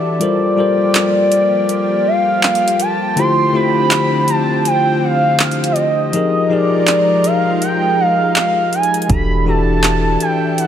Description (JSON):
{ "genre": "contemporary R&B", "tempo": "81 BPM", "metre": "4/4", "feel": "swing 58% on 16ths", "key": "unclear", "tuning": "A4 = 440 Hz", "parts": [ { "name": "gliding portamento lead", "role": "melody", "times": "0.0-10.7 s", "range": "D5 to C6", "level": "-16 LUFS", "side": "right 1 dB", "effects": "chorus, ping-pong delay" }, { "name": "bell-like tine electric piano", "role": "accompaniment", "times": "0.0-10.7 s", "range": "D3 to C5", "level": "-17 LUFS", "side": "left 3 dB", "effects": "none" }, { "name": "lush unison pad", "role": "sustained chords", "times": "0.0-10.7 s", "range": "D3 to Bb4", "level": "-22 LUFS", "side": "right 2 dB", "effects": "chorus, sidechain pumping" }, { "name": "smooth R&B drum kit", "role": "drums", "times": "0.2-10.7 s", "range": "handclaps, hi-hat, kick drum", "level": "-18 LUFS", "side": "right 1 dB", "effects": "overdrive" }, { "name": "clean 808-style bass", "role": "bass", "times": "9.1-10.2 s", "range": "E1", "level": "-17 LUFS", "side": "right 1 dB", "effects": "none" } ], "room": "light reverb", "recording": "none", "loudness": "-12 LUFS", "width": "side -9 dB against mid", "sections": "0.0-10.7 A section", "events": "break 0.0-9.1; kick muted 7.6-9.1", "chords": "0.2 Gm11; 3.2 Dm11; 6.1 Fm11; 9.1 Em11" }